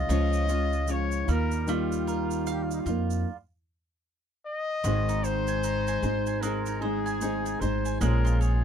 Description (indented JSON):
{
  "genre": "acoustic pop",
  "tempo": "76 BPM",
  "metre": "4/4",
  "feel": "swing 60% on 16ths",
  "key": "Ab major",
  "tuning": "A4 = 441 Hz",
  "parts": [
    { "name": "warm trumpet", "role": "melody", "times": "0.0-8.6 s", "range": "Eb4 to Eb5", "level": "-32 LUFS", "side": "left 4 dB", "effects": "none" },
    { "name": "nylon-string guitar", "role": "accompaniment", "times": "0.0-8.6 s", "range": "Ab2 to Ab4", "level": "-29 LUFS", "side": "equal", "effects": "none" },
    { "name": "bowl-back mandolin", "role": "arpeggios", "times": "0.0-8.6 s", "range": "G3 to Ab5", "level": "-37 LUFS", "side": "right 9 dB", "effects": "none" },
    { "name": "upright bass", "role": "bass", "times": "0.0-8.6 s", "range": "Ab1 to F2", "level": "-28 LUFS", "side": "equal", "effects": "none" },
    { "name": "tube shaker", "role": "percussion", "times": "0.1-8.6 s", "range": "none", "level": "-44 LUFS", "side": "right 18 dB", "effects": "none" }
  ],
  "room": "little or no reverb",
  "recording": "dry, close 1970s-style studio recording",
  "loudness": "-25 LUFS",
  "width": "side -8 dB against mid",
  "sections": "0.0-4.8 A section; 4.8-8.6 B section",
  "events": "stop 3.3-4.8",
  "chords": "0.0 Db; 1.3 Ebadd9; 4.8 Ab; 8.0 Bbm7"
}